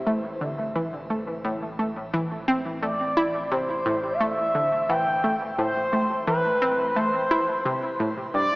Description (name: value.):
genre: ambient, sequencer-driven space music.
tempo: 87 BPM.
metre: 4/4.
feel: straight.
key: A minor.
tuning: A4 = 440 Hz.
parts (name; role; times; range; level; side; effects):
warm sub bass; bass; 0.0-8.6 s; G1 to A1; -45 LUFS; equal; none.
analog pluck; riff; 0.1-8.6 s; G2 to E4; -26 LUFS; equal; chorus, shimmer reverb, analog delay.
expressive synth lead; melody; 2.8-8.6 s; B4 to G5; -25 LUFS; equal; chorus, shimmer reverb, analog delay.
room: wet cathedral reverb, RT60 5.4 s.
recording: in a vast, echoing space, small speaker sound.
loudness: -22 LUFS.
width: side -23 dB against mid.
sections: 0.0-8.6 A section.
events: none.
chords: 0.0 Am.